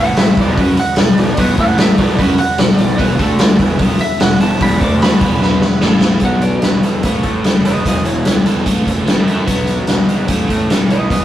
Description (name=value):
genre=blues rock power trio and southern rock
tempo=148 BPM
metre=4/4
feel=straight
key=unclear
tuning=A4 = 439 Hz
part: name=lightly driven lead guitar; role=melody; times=0.0-11.2 s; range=E4 to D6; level=-20 LUFS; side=right 2 dB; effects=none
part: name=overdriven tonewheel organ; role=sustained chords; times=0.0-11.2 s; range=E3 to C#5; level=-29 LUFS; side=right 4 dB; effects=none
part: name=overdriven electric guitar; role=riff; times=0.0-11.2 s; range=E2 to F#4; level=-20 LUFS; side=equal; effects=phaser
part: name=fuzz fingered electric bass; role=bass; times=0.0-11.2 s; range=E1 to A2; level=-19 LUFS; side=equal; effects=overdrive
part: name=raw garage drum kit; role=drums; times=0.2-11.2 s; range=hi-hat, kick drum, snare drum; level=-13 LUFS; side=equal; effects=none
room=light reverb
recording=rough rehearsal-room recording, warm saturation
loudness=-11 LUFS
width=side -12 dB against mid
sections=0.0-6.2 A section; 6.2-11.2 B section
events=lead electric guitar solo 0.0-6.2; drum fill 5.4-6.2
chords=0.4 B; 1.6 A5; 2.0 B; 3.0 E5; 3.2 D5; 3.6 E5; 4.8 D5; 5.2 E5; 5.8 A5; 6.2 B; 7.0 A; 7.9 E; 8.7 A; 9.5 B; 10.3 A